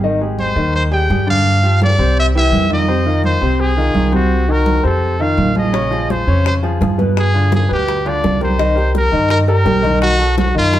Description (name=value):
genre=latin, salsa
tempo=168 BPM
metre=4/4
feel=straight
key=F minor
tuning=A4 = 436 Hz
part: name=clear upright piano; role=accompaniment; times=0.0-10.8 s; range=B2 to Eb5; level=-19 LUFS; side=left 1 dB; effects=none
part: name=upright bass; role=bass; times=0.0-10.8 s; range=Ab1 to G2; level=-16 LUFS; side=equal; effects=none
part: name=congas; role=percussion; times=0.0-10.8 s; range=none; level=-22 LUFS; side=right 3 dB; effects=none
part: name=bright trumpet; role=melody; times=0.4-10.8 s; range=E#4 to G5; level=-18 LUFS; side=equal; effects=none
part: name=bongos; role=percussion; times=5.7-10.8 s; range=none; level=-27 LUFS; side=left 6 dB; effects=none
room=wet studio reverb, RT60 0.9 s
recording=heard from further back in the room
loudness=-12 LUFS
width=side -12 dB against mid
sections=0.0-10.8 A section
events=none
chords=0.0 Abmaj7; 1.5 G5; 2.2 C; 2.9 Fm7; 4.3 Cm7b5; 5.0 F5; 5.7 Bbm9; 7.2 G7b9; 8.6 Cm7; 10.0 B7#11